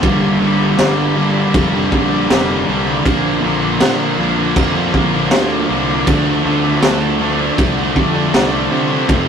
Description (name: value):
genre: quiet-loud alternative rock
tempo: 79 BPM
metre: 4/4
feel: straight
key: unclear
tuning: A4 = 439 Hz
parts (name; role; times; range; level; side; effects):
- crunchy overdriven guitar; riff; 0.0-9.3 s; F2 to D4; -23 LUFS; right 8 dB; none
- thick fuzz guitar; riff; 0.0-9.3 s; F2 to D4; -17 LUFS; left 1 dB; distortion
- tight distorted guitar; riff; 0.0-9.3 s; F2 to D4; -21 LUFS; right 1 dB; distortion
- fuzz fingered electric bass; bass; 0.0-9.3 s; F1 to C3; -22 LUFS; equal; overdrive
- raw garage drum kit; drums; 0.0-9.3 s; crash cymbal, kick drum, snare drum; -18 LUFS; equal; none
room: moderate studio reverb, RT60 0.6 s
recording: rough rehearsal-room recording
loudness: -12 LUFS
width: side -7 dB against mid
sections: 0.0-9.3 A section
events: none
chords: 0.0 Gm; 3.0 Bb; 6.1 Dm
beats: | 0.03 0.78 1.54 2.29 | 3.05 3.80 4.56 5.32 | 6.07 6.83 7.58 8.34 | 9.09